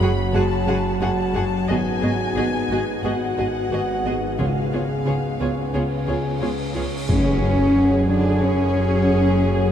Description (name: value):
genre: cinematic, suspense film score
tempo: 89 BPM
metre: 4/4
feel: straight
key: unclear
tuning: A4 = 441 Hz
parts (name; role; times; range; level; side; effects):
- warm chamber violin section; melody; 0.0-9.7 s; C#5 to B5; -31 LUFS; left 2 dB; none
- warm chamber violin section; second line; 0.0-9.7 s; G#4 to F#5; -30 LUFS; left 1 dB; none
- warm chamber viola section; accompaniment; 0.0-9.7 s; G#3 to G#4; -28 LUFS; right 3 dB; none
- dark French horn section; sustained chords; 0.0-9.7 s; D3 to G#4; -26 LUFS; left 2 dB; none
- glass harmonica; sustained chords; 0.0-9.7 s; F#4 to G#5; -33 LUFS; equal; none
- concert harp; riff; 0.0-9.7 s; F#2 to C#4; -26 LUFS; equal; none
- clear chamber double bass section; bass; 0.0-9.7 s; F#1 to F#2; -26 LUFS; equal; none
- warm chamber cello section; bass; 0.0-9.7 s; F#2 to D4; -25 LUFS; right 1 dB; none
- bowed-like drone; drone; 0.0-9.7 s; F#1 to C#2; -29 LUFS; equal; built-in reverb, phaser
- timpani; percussion; 4.4-8.1 s; F#2 to C#3; -27 LUFS; left 1 dB; none
- cymbal swell and impact; sound effects; 6.4-9.7 s; none; -30 LUFS; equal; none
room: wet huge ambient reverb, RT60 8.7 s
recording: in a vast, echoing space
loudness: -18 LUFS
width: side -9 dB against mid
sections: 0.0-7.1 A section; 7.1-9.7 B section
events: cymbal swell 6.4-7.1; impact 7.1-9.7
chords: 0.0 F#madd9; 1.7 G#m7; 4.4 C#7; 7.1 F#sus2